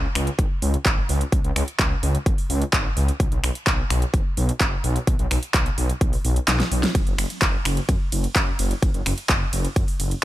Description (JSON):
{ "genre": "EDM, festival progressive house", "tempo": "128 BPM", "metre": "4/4", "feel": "straight", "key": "unclear", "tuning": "A4 = 440 Hz", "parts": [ { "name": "wide detuned saw bass", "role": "bass", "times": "0.0-10.1 s", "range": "F#1 to F#2", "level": "-23 LUFS", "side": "equal", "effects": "chorus, sidechain pumping" }, { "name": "big-room dance drum kit", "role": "drums", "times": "0.2-10.2 s", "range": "finger snaps, handclaps, hi-hat, ride cymbal, snare drum", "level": "-25 LUFS", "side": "equal", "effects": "overdrive" }, { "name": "electronic kick drum", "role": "drums", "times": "0.4-9.9 s", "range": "none", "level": "-22 LUFS", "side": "equal", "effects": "overdrive" } ], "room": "little or no reverb", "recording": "none", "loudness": "-19 LUFS", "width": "side -14 dB against mid", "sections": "0.0-10.2 A section", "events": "kick drops out 6.5-7.0; drum fill 6.5-7.0", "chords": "none", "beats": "0.39 0.86 | 1.32 1.79 2.26 2.73 | 3.20 3.67 4.14 4.61 | 5.08 5.54 6.01 6.48 | 6.95 7.42 7.89 8.36 | 8.82 9.29 9.76" }